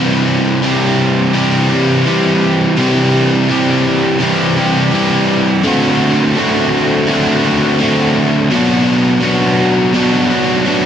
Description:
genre	rock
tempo	84 BPM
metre	4/4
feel	straight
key	C lydian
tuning	A4 = 440 Hz
part	crunchy overdriven guitar	solo	0.0-10.9 s	B2 to G4	-10 LUFS	equal	wide subtle chorus
room	moderate huge ambient reverb, RT60 4.3 s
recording	dense, heavily limited modern master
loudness	-10 LUFS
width	side -9 dB against mid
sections	0.0-10.9 A section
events	none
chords	0.0 C; 5.6 D5; 8.5 Bm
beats	0.62 1.34 2.06 | 2.77 3.49 4.21 4.92 | 5.64 6.35 7.07 7.79 | 8.50 9.22 9.94 10.65

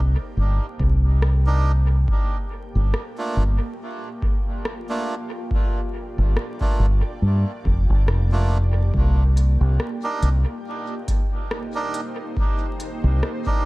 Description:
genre	ambient dub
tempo	70 BPM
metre	4/4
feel	swing 56% on 16ths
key	C minor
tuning	A4 = 443 Hz
part	granular cloud pad	sustained chords	0.0-13.7 s	Bb3 to G5	-34 LUFS	equal	built-in reverb
part	deep dub fingered electric bass	bass	0.0-13.2 s	F1 to G2	-17 LUFS	equal	none
part	electronic kick drum	drums	0.8-13.6 s	none	-23 LUFS	equal	studio reverb
part	organic electronic drum kit	drums	1.2-13.4 s	hi-hat, rim click	-34 LUFS	equal	studio reverb, dub echo
part	melodica	stabs	1.5-13.7 s	A3 to Bb4	-31 LUFS	right 3 dB	dub echo
room	digital ambience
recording	echo-heavy mix, vinyl crackle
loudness	-19 LUFS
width	side -21 dB against mid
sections	0.0-13.7 A section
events	fade-in on ambient pad 0.0-13.7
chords	0.0 Cm7; 2.1 Gm7; 8.9 Cm7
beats	0.37 1.22 | 2.08 2.94 3.79 4.65 | 5.51 6.37 7.22 8.08 | 8.94 9.79 10.65 11.51 | 12.37 13.22

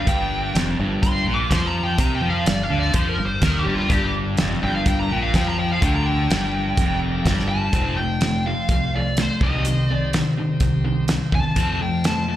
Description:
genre	classic rock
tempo	125 BPM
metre	4/4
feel	straight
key	G minor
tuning	A4 = 435 Hz
part	biting lead guitar	melody	0.0-12.4 s	F4 to D6	-25 LUFS	equal	wah, overdrive, slapback echo
part	bright tonewheel organ	sustained chords	0.0-12.4 s	C4 to C5	-35 LUFS	equal	overdrive, slow rotary speaker
part	distorted electric guitar	riff	0.0-12.4 s	F2 to C4	-23 LUFS	left 1 dB	distortion, slapback echo
part	fingered electric bass	bass	0.0-12.4 s	F1 to F2	-24 LUFS	equal	none
part	damped 70s drum kit	drums	0.1-12.2 s	hi-hat, kick drum, snare drum	-21 LUFS	equal	none
room	little or no reverb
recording	live gig heard through the venue's PA, recital hall reverb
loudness	-18 LUFS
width	side -13 dB against mid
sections	0.0-7.7 A section; 7.7-12.4 B section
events	lead electric guitar solo 0.0-7.7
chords	0.0 Gm; 7.7 F; 9.4 Cm; 11.6 F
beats	| 0.07 0.55 1.03 1.51 | 1.99 2.47 2.95 3.43 | 3.91 4.38 4.86 5.34 | 5.82 6.30 6.78 7.26 | 7.74 8.22 8.70 9.18 | 9.66 10.14 10.62 11.10 | 11.57 12.05

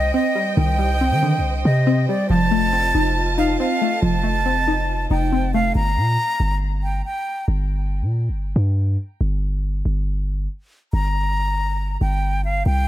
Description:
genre	hip hop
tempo	139 BPM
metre	4/4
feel	half-time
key	G minor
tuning	A4 = 440 Hz
part	breathy concert flute	melody	0.0-7.5, 10.9-12.9 s	D5 to Bb5	-23 LUFS	equal	ping-pong delay
part	warbly dusty pluck	accompaniment	0.0-5.8 s	D3 to Eb4	-22 LUFS	left 1 dB	chorus
part	warm studio string section	sustained chords	0.0-5.7 s	F4 to A5	-28 LUFS	right 2 dB	none
part	warm 808-style bass	bass	0.0-12.9 s	F1 to Eb3	-20 LUFS	equal	none
room	small room reverb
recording	none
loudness	-18 LUFS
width	side -13 dB against mid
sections	0.0-5.8 A section; 5.8-12.9 B section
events	break 7.5-10.9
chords	0.0 Cmadd9; 2.3 F7; 5.8 Gm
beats	0.14 | 0.57 1.01 1.44 1.87 | 2.30 2.73 3.16 3.60 | 4.03 4.46 4.89 5.32 | 5.75 6.19 6.62 7.05 | 7.48 7.91 8.34 8.78 | 9.21 9.64 10.07 10.50 | 10.93 11.37 11.80 12.23 | 12.66

